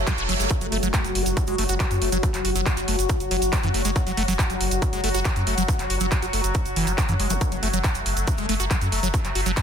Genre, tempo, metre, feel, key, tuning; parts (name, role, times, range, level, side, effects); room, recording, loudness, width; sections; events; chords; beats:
psychedelic trance; 139 BPM; 4/4; straight; A4 = 440 Hz
bubbling stepped-filter texture; sustained chords; 0.0-9.6 s; F#3 to F#4; -27 LUFS; left 2 dB; chorus, built-in reverb, sidechain pumping
round analog bass; bass; 0.0-9.5 s; E1 to F#2; -26 LUFS; equal; tube saturation
reverse cymbal and zap; sound effects; 0.0-0.5, 7.3-7.4 s; -30 LUFS; right 4 dB
liquid acid bass; riff; 0.1-9.6 s; E3 to F#4; -29 LUFS; right 1 dB; phaser, auto-pan, cassette tape, sidechain pumping, tape echo
electronic kick drum; drums; 0.1-9.6 s; -24 LUFS; equal; distortion, overdrive
techno drum kit; drums; 0.1-9.6 s; handclaps, hi-hat; -29 LUFS; right 1 dB; overdrive
tube shaker; percussion; 0.1-9.6 s; -33 LUFS; right 8 dB
light reverb, digital ambience; dense, heavily limited modern master; -20 LUFS; side -8 dB against mid
0.0-9.6 A section
reverse cymbal 0.0-0.5
0.0 Esus4 (rootless)
0.07 | 0.51 0.94 1.37 1.80 | 2.23 2.66 3.10 3.53 | 3.96 4.39 4.82 5.25 | 5.68 6.12 6.55 6.98 | 7.41 7.84 8.28 8.71 | 9.14 9.57